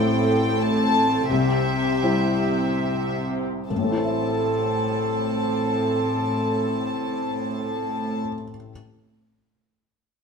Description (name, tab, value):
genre	cinematic, emotional film score for orchestra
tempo	free time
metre	none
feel	none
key	A minor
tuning	A4 = 440 Hz
part	warm symphonic violin section	melody	0.0-8.2 s	E5 to A5	-28 LUFS	left 2 dB	none
part	dark studio viola section	accompaniment	0.0-8.2 s	C4 to A4	-25 LUFS	right 1 dB	none
part	felt-muted upright piano	accompaniment	0.0-8.7 s	A1 to E5	-26 LUFS	left 4 dB	none
part	rich symphonic cello section	bass	0.0-8.2 s	A2 to C3	-28 LUFS	right 1 dB	none
room	moderate stone room reverb, RT60 1.1 s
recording	minimal, uncompressed stereo recording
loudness	-21 LUFS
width	side -6 dB against mid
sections	0.0-3.7 A section; 3.7-8.7 B section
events	slowing down 0.0-3.7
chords	0.0 Am; 1.3 C; 3.7 Am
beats	free time